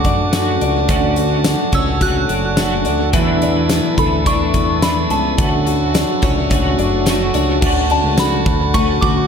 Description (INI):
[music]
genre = dream pop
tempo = 107 BPM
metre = 4/4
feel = straight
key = D major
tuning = A4 = 440 Hz
[part]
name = soft synth bell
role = melody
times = 0.0-9.3 s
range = A5 to F#6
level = -23 LUFS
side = equal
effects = chorus, phaser, dub echo
[part]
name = clean electric guitar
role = accompaniment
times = 0.0-9.3 s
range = E2 to F#4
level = -21 LUFS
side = right 3 dB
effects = harmonic tremolo, analog chorus, dub echo
[part]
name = tonewheel organ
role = sustained chords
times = 0.0-9.3 s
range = E4 to A5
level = -23 LUFS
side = right 1 dB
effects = overdrive, stopped rotary speaker
[part]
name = picked twelve-string acoustic guitar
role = arpeggios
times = 0.0-9.3 s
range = E3 to C#5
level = -21 LUFS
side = left 6 dB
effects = wide subtle chorus, dub echo
[part]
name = fat analog bass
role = bass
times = 0.0-9.3 s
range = F#1 to F#2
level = -20 LUFS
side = equal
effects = none
[part]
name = huge arena drum kit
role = drums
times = 0.0-9.2 s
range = crash cymbal, hi-hat, kick drum, ride cymbal, snare drum, tambourine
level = -19 LUFS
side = equal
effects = dub echo
[sound]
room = light reverb, studio ambience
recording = echo-heavy mix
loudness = -13 LUFS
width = side -7 dB against mid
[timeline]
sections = 0.0-7.6 A section; 7.6-9.3 B section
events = none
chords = 0.0 Dmaj7; 3.1 E7sus4; 5.4 Dmaj7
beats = 0.33 | 0.89 1.46 2.02 2.58 | 3.14 3.70 4.26 4.82 | 5.38 5.94 6.50 7.06 | 7.62 8.18 8.74